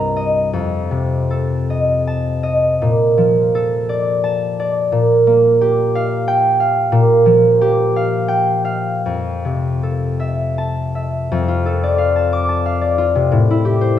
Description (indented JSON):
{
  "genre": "classical, solo harp piece",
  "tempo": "75-95 BPM",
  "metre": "3/4",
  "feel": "rubato",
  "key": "Bb major, F major from 6.9 s",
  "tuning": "A4 = 439 Hz",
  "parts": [
    { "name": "concert harp", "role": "solo", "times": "0.0-14.0 s", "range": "C2 to D6", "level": "-14 LUFS", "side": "equal", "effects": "none" }
  ],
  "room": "wet recital hall reverb, RT60 1.5 s",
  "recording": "dark, warm production, nothing above 10.6 kHz",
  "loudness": "-14 LUFS",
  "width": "side -10 dB against mid",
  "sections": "0.0-11.3 A section; 11.3-14.0 B section",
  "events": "none",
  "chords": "0.0 Cm7; 0.5 F9; 2.8 Bbmaj7; 4.9 Bb5; 9.1 Fmaj7; 11.3 F6; 13.3 Am7",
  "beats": "| 0.53 1.30 2.07 | 2.83 3.54 4.23 | 4.93 5.62 6.28 | 6.93 7.62 8.30 | 9.05 9.83 10.58 | 11.32 11.99 12.65 | 13.32 13.95"
}